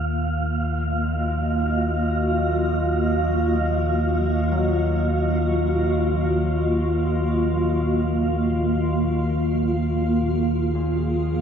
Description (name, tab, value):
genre	ambient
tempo	free time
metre	none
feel	none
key	Eb minor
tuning	A4 = 438 Hz
part	granular cloud pad	sustained chords	0.0-11.4 s	Bb3 to F5	-23 LUFS	equal	built-in reverb
part	deep rumbling drone	drone	0.0-11.4 s	Eb2 to Eb3	-24 LUFS	left 1 dB	built-in reverb
part	wind-like tuned noise texture	texture	0.0-11.4 s	F5	-30 LUFS	right 3 dB	built-in reverb
part	warm concert grand piano	arpeggios	4.5-11.4 s	Bb2 to Gb3	-38 LUFS	right 1 dB	none
room	wet huge ambient reverb, RT60 8.3 s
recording	cassette tape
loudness	-20 LUFS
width	side -7 dB against mid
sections	0.0-11.4 A section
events	fade-out on synth texture 0.0-11.4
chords	0.0 Ebmadd9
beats	free time